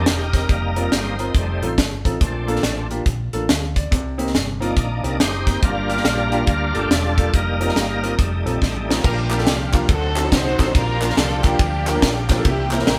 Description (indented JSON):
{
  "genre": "uptempo gospel",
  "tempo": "140 BPM",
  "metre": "4/4",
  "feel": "swing 63% on 8ths",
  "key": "Bb major",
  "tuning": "A4 = 441 Hz",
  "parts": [
    { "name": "bright tonewheel organ", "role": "sustained chords", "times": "0.0-13.0 s", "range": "E3 to C5", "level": "-27 LUFS", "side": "equal", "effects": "slow rotary speaker, overdrive, chorus vibrato" },
    { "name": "hollow-body short-scale fingered electric bass", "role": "bass", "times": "0.0-13.0 s", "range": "E1 to D2", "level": "-27 LUFS", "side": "equal", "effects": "none" },
    { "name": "crisp fusion drum kit", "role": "drums", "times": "0.1-13.0 s", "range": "crash cymbal, hi-hat, kick drum, ride cymbal, snare drum, toms", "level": "-22 LUFS", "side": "equal", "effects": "none" },
    { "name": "warm concert grand piano", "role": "accompaniment", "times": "0.3-13.0 s", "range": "G2 to F5", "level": "-28 LUFS", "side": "equal", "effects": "none" },
    { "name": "warm studio string section", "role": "melody", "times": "9.0-13.0 s", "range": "Bb3 to C5", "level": "-27 LUFS", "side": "equal", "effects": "none" },
    { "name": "group handclap", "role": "percussion", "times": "9.3-12.8 s", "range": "none", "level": "-34 LUFS", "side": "equal", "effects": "none" }
  ],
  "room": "moderate stone room reverb, RT60 1.3 s",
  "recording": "band playing live in one room",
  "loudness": "-20 LUFS",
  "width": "mono",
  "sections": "0.0-9.0 A section; 9.0-13.0 B section",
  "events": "tonewheel organ solo 0.0-9.0; drum fill 8.6-9.0",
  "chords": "0.5 F7sus4; 1.4 F7; 2.2 Bbmaj7; 3.9 Cm7; 5.6 Gm7; 7.3 F7sus4; 8.2 F7; 9.0 Bb6; 9.9 D7b9; 10.7 Gm7/Bb; 12.5 C7"
}